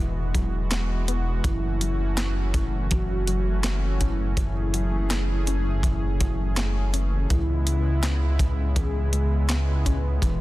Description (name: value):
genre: synthwave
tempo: 82 BPM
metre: 4/4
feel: straight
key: F# minor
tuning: A4 = 441 Hz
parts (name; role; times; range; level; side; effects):
- mellow synth brass; melody; 0.0-10.4 s; E4 to B4; -34 LUFS; equal; chorus, tape echo
- warm analog pad; sustained chords; 0.0-10.4 s; C#3 to G#4; -33 LUFS; right 1 dB; chorus, sidechain pumping
- warbly dusty pluck; arpeggios; 0.0-10.4 s; E3 to C#4; -36 LUFS; left 2 dB; chorus, tape echo
- dark detuned saw bass; bass; 0.0-10.4 s; E1 to C#2; -24 LUFS; equal; tube saturation
- clean 12-bit digital drum machine; drums; 0.3-10.4 s; handclaps, hi-hat, snare drum; -31 LUFS; equal; overdrive
- kick drum; drums; 0.3-10.4 s; none; -27 LUFS; equal; none
room: digital ambience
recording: dense, heavily limited modern master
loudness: -22 LUFS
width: side -17 dB against mid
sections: 0.0-10.4 A section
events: none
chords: 0.0 Eadd9; 1.4 F#m7; 7.3 C#m7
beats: 0.71 | 1.45 2.18 2.91 3.64 | 4.37 5.11 5.84 6.57 | 7.30 8.03 8.76 9.49 | 10.23